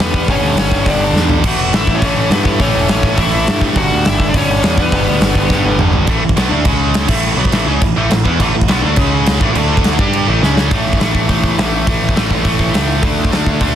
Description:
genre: punk rock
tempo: 207 BPM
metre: 4/4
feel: straight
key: A mixolydian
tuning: A4 = 445 Hz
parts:
  - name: crunchy overdriven guitar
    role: melody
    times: 0.0-5.8 s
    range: B3 to F#5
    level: -19 LUFS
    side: left 2 dB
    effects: digital delay
  - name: distorted electric guitar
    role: riff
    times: 0.0-13.8 s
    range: G2 to G4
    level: -16 LUFS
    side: equal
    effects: overdrive
  - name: growling picked electric bass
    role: bass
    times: 0.0-13.8 s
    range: E1 to G2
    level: -18 LUFS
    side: equal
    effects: overdrive
  - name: big rock drum kit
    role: drums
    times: 0.0-13.7 s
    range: crash cymbal, hi-hat, kick drum, snare drum, toms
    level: -15 LUFS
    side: equal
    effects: none
room: little or no reverb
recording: dense, heavily limited modern master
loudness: -11 LUFS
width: side -10 dB against mid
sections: 0.0-6.1 A section; 6.1-10.7 B section; 10.7-13.8 C section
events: drum fill 1.2, 5.5-6.1, 10.4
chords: 0.0 G; 1.4 A; 3.8 G; 6.1 A5; 6.7 C#5; 7.1 A; 9.0 C#5; 9.4 A5; 9.6 D5; 10.0 G5; 10.3 A5; 10.4 C#5; 10.7 A5; 13.0 D5

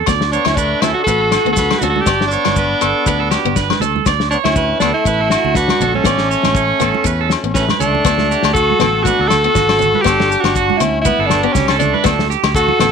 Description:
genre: highlife guitar band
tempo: 120 BPM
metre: 4/4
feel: swing 55% on 16ths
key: D major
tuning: A4 = 435 Hz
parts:
  - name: electric guitar at the edge of break-up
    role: arpeggios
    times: 0.0-12.9 s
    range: F#4 to D5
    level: -19 LUFS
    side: right 15 dB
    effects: slapback echo
  - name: picked acoustic archtop guitar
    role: accompaniment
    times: 0.1-12.9 s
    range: F#3 to C#4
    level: -24 LUFS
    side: left 14 dB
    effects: none
  - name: fingered electric bass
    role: bass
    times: 0.1-12.9 s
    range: G1 to E2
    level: -21 LUFS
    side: equal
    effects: none
  - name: warm soul drum kit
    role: drums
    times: 0.1-12.9 s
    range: kick drum, snare drum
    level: -20 LUFS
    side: left 4 dB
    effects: none
  - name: agogo bells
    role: percussion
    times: 0.1-12.9 s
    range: none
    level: -23 LUFS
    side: left 16 dB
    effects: none
  - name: maracas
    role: percussion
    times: 0.1-12.9 s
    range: none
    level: -29 LUFS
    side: right 17 dB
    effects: none
  - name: edgy alto saxophone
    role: melody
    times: 0.3-12.9 s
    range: C#4 to A4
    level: -17 LUFS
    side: equal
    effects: none
  - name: breathy trumpet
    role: second line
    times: 0.3-12.9 s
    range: G3 to F#4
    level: -24 LUFS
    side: left 12 dB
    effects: none
  - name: congas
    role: percussion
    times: 0.5-12.9 s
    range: none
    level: -25 LUFS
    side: right 13 dB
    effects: none
room: light reverb, studio ambience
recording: 1960s-style stereo with parts hard left and right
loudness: -12 LUFS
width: side -6 dB against mid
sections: 0.0-8.1 A section; 8.1-12.9 B section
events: none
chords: 0.1 D; 2.1 G; 4.1 Dsus2; 6.1 A; 8.1 D; 10.1 G; 12.1 D

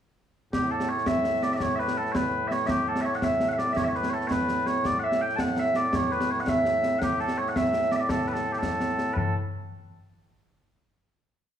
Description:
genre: scottish traditional, Scottish pipe music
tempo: 111 BPM (dotted quarters)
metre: 6/8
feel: straight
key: A mixolydian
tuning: A4 = 440 Hz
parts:
  - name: mellow small bagpipes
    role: melody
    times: 0.5-9.3 s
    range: A2 to A5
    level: -25 LUFS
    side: equal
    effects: none
  - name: concert snare drum, concert bass drum and concert toms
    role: drums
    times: 0.5-9.3 s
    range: none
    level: -28 LUFS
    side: equal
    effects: none
room: wet recital hall reverb, RT60 1.4 s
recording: small room reverb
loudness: -24 LUFS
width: side -9 dB against mid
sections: 0.5-9.2 A section; 9.2-10.3 final note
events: none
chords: none

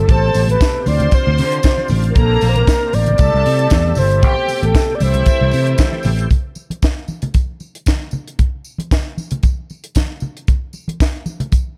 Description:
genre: disco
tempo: 115 BPM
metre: 4/4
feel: straight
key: C mixolydian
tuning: A4 = 444 Hz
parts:
  - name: bright reedy wooden-headed alto flute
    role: melody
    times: 0.0-6.1 s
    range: A4 to D5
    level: -21 LUFS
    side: equal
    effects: none
  - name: overdriven tonewheel organ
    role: sustained chords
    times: 0.0-6.3 s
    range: B2 to G4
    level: -28 LUFS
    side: equal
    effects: chorus vibrato, slow rotary speaker
  - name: fingered electric bass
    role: bass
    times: 0.0-6.3 s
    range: G1 to D3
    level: -18 LUFS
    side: equal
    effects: none
  - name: clear studio string section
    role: second line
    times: 0.1-6.0 s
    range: Bb3 to C6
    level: -26 LUFS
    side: equal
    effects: none
  - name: tight funk drum kit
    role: drums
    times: 0.1-11.7 s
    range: hi-hat, kick drum, snare drum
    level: -18 LUFS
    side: equal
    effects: none
  - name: congas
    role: percussion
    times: 0.1-11.6 s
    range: none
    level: -27 LUFS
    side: equal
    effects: none
  - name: tambourine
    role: percussion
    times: 0.3-11.6 s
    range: none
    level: -39 LUFS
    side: equal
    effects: none
room: small room reverb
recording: dark, warm production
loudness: -16 LUFS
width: mono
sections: 0.0-6.3 A section; 6.3-11.8 B section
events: none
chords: 0.1 Am9; 0.9 Dm7; 2.2 Bbmaj9; 3.2 C6; 4.2 Am9; 5.0 C6; 6.3 N.C.

